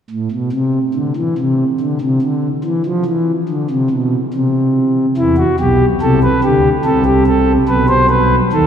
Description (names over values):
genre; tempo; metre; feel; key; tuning
classical, baroque-style 3-part fugue for pipe organ; 71 BPM; 3/4; straight; unclear; A4 = 443 Hz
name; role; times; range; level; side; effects
pipe organ, principal; solo; 0.1-8.7 s; B1 to C5; -12 LUFS; equal; none
room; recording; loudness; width
wet cathedral reverb, RT60 6.0 s; recorded in a church or concert hall; -12 LUFS; side -8 dB against mid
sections
0.1-8.7 A section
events
none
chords
0.1 N.C.; 5.2 Em; 6.8 Am/C; 7.7 B